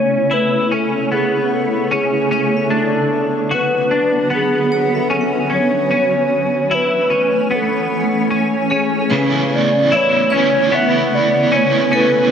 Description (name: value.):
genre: dream pop.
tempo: 75 BPM.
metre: 4/4.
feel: straight.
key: A major.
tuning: A4 = 440 Hz.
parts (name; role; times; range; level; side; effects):
hollow clarinet-like synth lead; melody; 0.0-12.3 s; G#4 to E5; -18 LUFS; equal; chorus, digital delay.
shimmering ambient pad; sustained chords; 0.0-12.3 s; C#3 to G#5; -20 LUFS; equal; chorus, built-in reverb.
semi-hollow electric guitar; arpeggios; 0.0-12.3 s; C#3 to F#4; -19 LUFS; left 2 dB; ensemble chorus, digital delay.
vibraphone with hard mallets; texture; 2.3-12.3 s; D4 to C#6; -28 LUFS; left 1 dB; digital delay.
raw garage guitar; accompaniment; 9.1-12.3 s; A2 to E4; -19 LUFS; right 4 dB; overdrive, tremolo, analog chorus.
room: wet lush hall reverb, RT60 2.9 s.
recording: none.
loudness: -14 LUFS.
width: side -8 dB against mid.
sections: 0.0-9.1 A section; 9.1-12.3 B section.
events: none.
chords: 0.0 Aadd9; 2.7 Bm; 5.9 Amaj7; 9.1 Aadd9.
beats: 0.31 1.11 1.91 | 2.71 3.51 4.31 5.11 | 5.91 6.71 7.51 8.31 | 9.11 9.91 10.71 11.51 | 12.31.